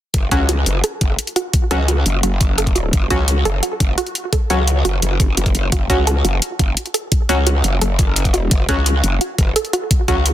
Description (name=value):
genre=dark technical drum and bass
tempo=172 BPM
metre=4/4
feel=straight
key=F# minor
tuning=A4 = 440 Hz
part: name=wide unison pluck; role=arpeggios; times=0.1-10.1 s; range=F#4 to A4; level=-24 LUFS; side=right 3 dB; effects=sidechain pumping, digital delay
part: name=growl bass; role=bass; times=0.1-10.3 s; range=F#1 to C#2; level=-17 LUFS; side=equal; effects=chorus, tube saturation, sidechain pumping
part: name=electronic hi-hat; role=drums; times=0.1-10.3 s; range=none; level=-21 LUFS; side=left 1 dB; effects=overdrive
part: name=electronic kick drum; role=drums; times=0.1-10.2 s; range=none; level=-17 LUFS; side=equal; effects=overdrive
part: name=band-passed chord stab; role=stabs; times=0.3-10.2 s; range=F#3 to F#4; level=-23 LUFS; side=left 1 dB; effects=chorus, digital delay
room=light reverb, digital ambience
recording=dense, heavily limited modern master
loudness=-15 LUFS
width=side -12 dB against mid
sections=0.1-10.3 A section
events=filter sweep on synth arpeggio sound 0.1-10.3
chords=0.1 F#m